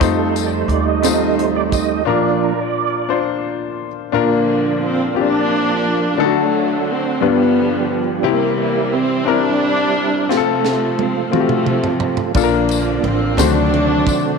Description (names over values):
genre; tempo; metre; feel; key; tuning
slow gospel; 58 BPM (dotted quarters); 6/8; straight; Bb major; A4 = 439 Hz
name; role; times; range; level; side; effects
clear concert grand piano; accompaniment; 0.0-14.4 s; G2 to C5; -19 LUFS; left 12 dB; none
dark French horn section; sustained chords; 0.0-4.1 s; F3 to F4; -29 LUFS; right 2 dB; none
tonewheel organ; sustained chords; 0.0-14.4 s; C3 to Eb5; -21 LUFS; right 12 dB; slow rotary speaker, chorus vibrato
upright bass; bass; 0.0-2.0, 12.3-14.0 s; A1 to F2; -22 LUFS; right 1 dB; none
tight funk drum kit; drums; 0.0-1.9, 10.3-14.2 s; hi-hat, kick drum, ride cymbal, snare drum, toms; -22 LUFS; right 5 dB; none
tambourine; percussion; 0.0-2.0, 12.4-14.4 s; none; -28 LUFS; left 15 dB; none
dark studio string section; melody; 4.1-14.4 s; C3 to D4; -18 LUFS; equal; none
room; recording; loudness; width
moderate echo chamber reverb, RT60 2.2 s; 1960s-style stereo with parts hard left and right; -14 LUFS; side -4 dB against mid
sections
0.0-4.1 A section; 4.1-14.4 B section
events
tonewheel organ solo 0.0-4.1; break 2.1-4.1; drum fill 10.3-12.3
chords
0.0 F7; 2.1 Bb; 6.2 D; 7.2 G7; 8.2 C; 10.3 F; 12.3 Bb; 13.4 D7b9